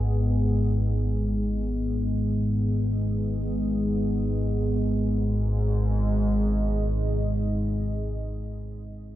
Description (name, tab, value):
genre	ambient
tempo	free time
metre	none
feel	none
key	unclear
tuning	A4 = 440 Hz
part	deep dark ambient pad	sustained chords	0.0-8.5 s	B3 to D#5	-31 LUFS	equal	chorus, built-in reverb
part	analog drone	drone	0.0-8.2 s	G#1 to G#2	-24 LUFS	equal	chorus
room	wet cathedral reverb, RT60 5.2 s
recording	dark, warm production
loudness	-23 LUFS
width	side -14 dB against mid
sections	0.0-4.8 A section; 4.8-8.5 B section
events	none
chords	0.0 G#m; 4.8 G#